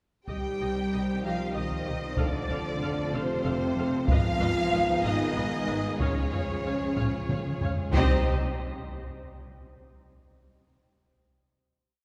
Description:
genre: cinematic, epic orchestral film score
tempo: 63 BPM (dotted quarters)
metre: 6/8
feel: straight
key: unclear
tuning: A4 = 438 Hz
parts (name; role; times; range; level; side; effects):
- warm symphonic violin section; melody; 0.3-8.3 s; C5 to G5; -40 LUFS; equal; none
- warm symphonic violin section; second line; 0.3-8.3 s; C5 to G5; -38 LUFS; equal; none
- clear symphonic viola section; accompaniment; 0.3-8.3 s; G4 to F5; -41 LUFS; equal; none
- mellow French horn section; sustained chords; 0.3-8.2 s; C4 to G4; -36 LUFS; equal; none
- mellow trombone section; sustained chords; 0.3-8.2 s; Eb3 to Eb4; -40 LUFS; equal; none
- warm symphonic string section; sustained chords; 0.3-8.3 s; Ab3 to Db5; -40 LUFS; equal; none
- rich symphonic cello section; bass; 0.3-8.3 s; C3 to C4; -37 LUFS; equal; none
- warm symphonic double bass section; bass; 0.3-8.3 s; F1 to Db2; -36 LUFS; equal; none
- taiko ensemble; drums; 0.3-9.2 s; none; -33 LUFS; equal; none
room: wet church reverb, RT60 3.4 s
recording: recorded in a church or concert hall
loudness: -28 LUFS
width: mono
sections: 0.3-7.9 theme; 7.9-9.8 final chord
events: drum fill 7.0-7.9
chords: 0.3 Cm; 2.2 F; 4.1 Abm; 6.0 Db; 7.9 Cm

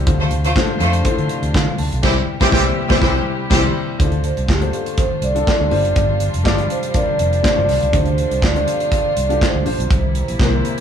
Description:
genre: disco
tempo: 122 BPM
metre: 4/4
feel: straight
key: D minor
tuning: A4 = 441 Hz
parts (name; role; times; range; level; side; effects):
- warm baby grand piano; accompaniment; 0.0-10.8 s; C3 to A5; -23 LUFS; left 4 dB; none
- warm studio string section; sustained chords; 0.0-10.8 s; C3 to G4; -27 LUFS; equal; none
- fingered electric bass; bass; 0.0-10.6 s; F1 to D3; -20 LUFS; equal; none
- modern studio drum kit; drums; 0.1-10.8 s; crash cymbal, handclaps, hi-hat, kick drum, snare drum; -19 LUFS; equal; none
- bright studio violin section; second line; 0.2-3.7 s; G3 to C5; -22 LUFS; equal; none
- clear horn section; stabs; 2.0-3.6 s; E3 to G4; -21 LUFS; right 2 dB; none
- vibraphone with soft mallets; melody; 4.0-10.6 s; G4 to D5; -20 LUFS; right 2 dB; tape echo
room: moderate studio reverb, RT60 0.6 s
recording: band playing live in one room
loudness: -15 LUFS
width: side -8 dB against mid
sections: 0.0-4.0 A section; 4.0-10.8 B section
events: band accent 2.0-4.0; vibraphone solo 4.0-10.8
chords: 0.1 Dm7; 2.0 C; 4.0 Dm7; 5.7 G7sus4; 7.9 Dm7; 9.9 C7

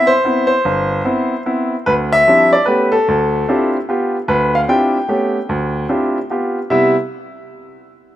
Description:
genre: jazz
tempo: 149 BPM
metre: 3/4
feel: swing 65% on 8ths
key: C major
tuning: A4 = 439 Hz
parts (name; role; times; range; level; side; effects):
- clear baby grand piano; solo; 0.0-6.9 s; G1 to G5; -13 LUFS; equal; none
room: light reverb, small room ambience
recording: rough home demo mix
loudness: -13 LUFS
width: side -13 dB against mid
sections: 0.0-1.9 A section; 1.9-6.7 B section; 6.7-7.9 C section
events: none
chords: 0.0 Cmaj7; 1.9 Dm11; 2.7 A9; 3.1 Dm11; 3.9 G7; 4.3 Dm11; 5.1 A9; 5.5 Dm11; 6.3 G7; 6.7 Cmaj7

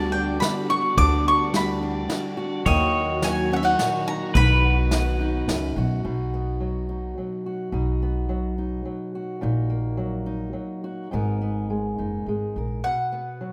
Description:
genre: acoustic folk duo or small band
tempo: 106 BPM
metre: 3/4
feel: straight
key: B major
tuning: A4 = 440 Hz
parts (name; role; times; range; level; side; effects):
- bowl-back mandolin; melody; 0.0-5.7, 12.8-13.5 s; D#5 to D6; -26 LUFS; equal; none
- pedal steel guitar; second line; 0.0-5.7 s; B4 to D5; -31 LUFS; equal; none
- fingerpicked steel-string acoustic guitar; accompaniment; 0.0-13.5 s; F#2 to A#4; -30 LUFS; equal; none
- warm symphonic string section; sustained chords; 0.0-6.0 s; D3 to F#4; -36 LUFS; equal; none
- upright bass; bass; 0.0-12.8 s; F#1 to D#2; -28 LUFS; equal; none
- soft brush drum kit; drums; 0.4-5.6 s; kick drum, ride cymbal, snare drum; -31 LUFS; equal; none
room: light reverb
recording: none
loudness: -24 LUFS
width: mono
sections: 0.0-6.0 A section; 6.0-12.8 B section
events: none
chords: 0.0 Gmaj7/D; 2.7 D#m; 4.3 B; 9.4 D#m/A#; 11.1 G#madd9; 12.8 B5

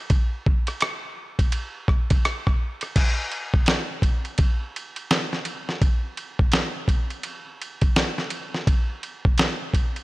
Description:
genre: hip hop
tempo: 84 BPM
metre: 4/4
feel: swing 61% on 16ths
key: none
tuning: none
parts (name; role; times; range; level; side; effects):
- dusty soul sampler-style drum kit; drums; 0.1-10.0 s; crash cymbal, hi-hat, kick drum, ride cymbal, rim click, snare drum; -21 LUFS; equal; none
room: light reverb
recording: dry, gritty hardware recording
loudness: -21 LUFS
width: side -20 dB against mid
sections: 0.0-3.0 A section; 3.0-10.0 B section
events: none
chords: none

